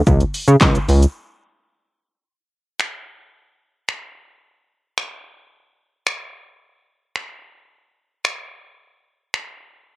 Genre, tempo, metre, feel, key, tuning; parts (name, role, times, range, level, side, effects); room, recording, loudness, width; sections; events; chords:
dance-pop; 110 BPM; 4/4; straight; A4 = 441 Hz
chorused synth bass; bass; 0.1-1.1 s; Db2 to Db3; -12 LUFS; equal; sidechain pumping
deep house drum kit; drums; 0.1-9.5 s; finger snaps, handclaps, hi-hat, kick drum, shaker, snare drum; -19 LUFS; equal; overdrive, cassette tape
little or no reverb; home recording on cassette; -18 LUFS; side -19 dB against mid
0.0-2.2 A section; 2.2-10.0 B section
drop 0.0-2.2; break 1.2-2.2